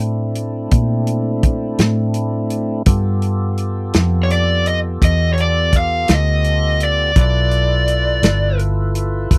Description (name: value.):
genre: slow blues.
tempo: 56 BPM (dotted quarters).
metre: 12/8.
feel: straight.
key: unclear.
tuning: A4 = 440 Hz.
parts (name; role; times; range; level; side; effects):
tonewheel organ; sustained chords; 0.0-9.4 s; A3 to B4; -27 LUFS; equal; slow rotary speaker, overdrive.
vintage muted fingered electric bass; bass; 0.0-9.4 s; F1 to Bb2; -20 LUFS; equal; none.
warm soul drum kit; drums; 0.0-9.4 s; hi-hat, kick drum, snare drum; -18 LUFS; equal; none.
lead guitar through a small cranked amp; melody; 4.2-8.6 s; Db5 to F5; -20 LUFS; equal; overdrive.
room: little or no reverb.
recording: dry, close 1970s-style studio recording.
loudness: -17 LUFS.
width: mono.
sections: 0.0-9.4 A section.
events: none.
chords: 0.0 C13; 2.9 G13.